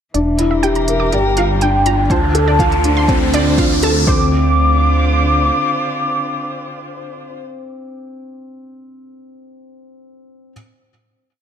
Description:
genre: piano and strings electronica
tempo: 122 BPM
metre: 4/4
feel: straight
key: D minor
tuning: A4 = 440 Hz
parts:
  - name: muted string quartet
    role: sustained chords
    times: 0.1-7.5 s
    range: D3 to C5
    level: -24 LUFS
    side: left 1 dB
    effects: sidechain pumping
  - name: wide unison pluck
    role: arpeggios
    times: 0.1-4.3 s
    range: C5 to D6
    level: -24 LUFS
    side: right 4 dB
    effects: sidechain pumping, tape echo
  - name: felt-muted upright piano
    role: riff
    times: 0.1-10.5 s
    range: C4 to Bb4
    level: -20 LUFS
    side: equal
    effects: none
  - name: dark detuned saw bass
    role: bass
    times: 0.1-5.5 s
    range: E1 to D2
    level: -17 LUFS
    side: equal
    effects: sidechain pumping
  - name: electronic hi-hat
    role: drums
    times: 0.1-3.9 s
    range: none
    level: -26 LUFS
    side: right 2 dB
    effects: none
  - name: riser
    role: sound effects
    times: 1.3-4.1 s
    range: none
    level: -24 LUFS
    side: left 1 dB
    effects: none
  - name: warm velvety synth lead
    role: melody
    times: 0.2-7.2 s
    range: E5 to D6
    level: -20 LUFS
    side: equal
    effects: chorus
  - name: electronic kick drum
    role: drums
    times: 2.1-4.2 s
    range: none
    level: -18 LUFS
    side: equal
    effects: none
room: moderate recital hall reverb, RT60 1.7 s, digital ambience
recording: none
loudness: -12 LUFS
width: side -8 dB against mid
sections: 0.1-4.1 build; 4.1-8.0 final chord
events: build-up 0.1-4.1; filter sweep on soft synth lead 0.1-4.1; riser 1.3-4.1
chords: 0.1 Em7b5; 1.1 Gm7; 2.1 Dm7

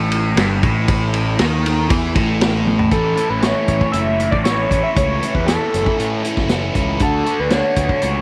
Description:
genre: psychedelic rock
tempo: 118 BPM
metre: 4/4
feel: straight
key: A major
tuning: A4 = 440 Hz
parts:
  - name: overdriven electric guitar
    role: riff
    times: 0.0-8.2 s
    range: G2 to F#4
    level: -22 LUFS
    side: equal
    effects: phaser
  - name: fuzz picked electric bass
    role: bass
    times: 0.0-8.2 s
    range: F#1 to A2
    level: -24 LUFS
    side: equal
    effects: overdrive
  - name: vintage drum kit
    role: drums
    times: 0.1-8.1 s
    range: hi-hat, kick drum, ride cymbal, snare drum, toms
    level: -22 LUFS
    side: equal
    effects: none
  - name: overdriven synth lead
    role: melody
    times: 2.9-8.2 s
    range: A4 to E5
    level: -23 LUFS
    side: equal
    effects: tape echo
room: light reverb, studio reverb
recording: none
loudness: -17 LUFS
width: mono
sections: 0.0-2.9 A section; 2.9-8.2 B section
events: drum fill 2.7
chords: 0.0 A5; 2.9 A; 7.0 D

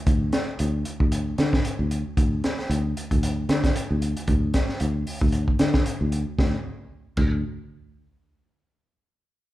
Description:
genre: afrobeat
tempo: 114 BPM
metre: 4/4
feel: swing 56% on 16ths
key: unclear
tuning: A4 = 441 Hz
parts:
  - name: fingered electric bass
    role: bass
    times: 0.1-7.4 s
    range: D2 to D3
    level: -25 LUFS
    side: left 1 dB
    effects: none
  - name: crunchy breakbeat drum kit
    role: drums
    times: 0.1-7.3 s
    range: crash cymbal, hi-hat, kick drum, snare drum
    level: -24 LUFS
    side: equal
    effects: none
room: light reverb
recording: band playing live in one room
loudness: -22 LUFS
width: side -15 dB against mid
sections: 0.0-6.4 A section; 6.4-8.5 B section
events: none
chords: none

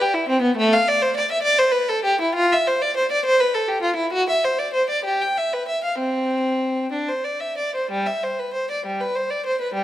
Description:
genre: classical, baroque-style suite movement for unaccompanied violin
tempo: 56-71 BPM (dotted quarters)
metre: 6/8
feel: rubato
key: unclear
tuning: A4 = 440 Hz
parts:
  - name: rich violin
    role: solo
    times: 0.0-9.8 s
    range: G3 to G5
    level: -19 LUFS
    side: equal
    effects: none
room: moderate scoring stage reverb, RT60 1.9 s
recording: close, detailed microphones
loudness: -19 LUFS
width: side -13 dB against mid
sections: 0.0-7.9 A section; 7.9-9.8 A section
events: none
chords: none

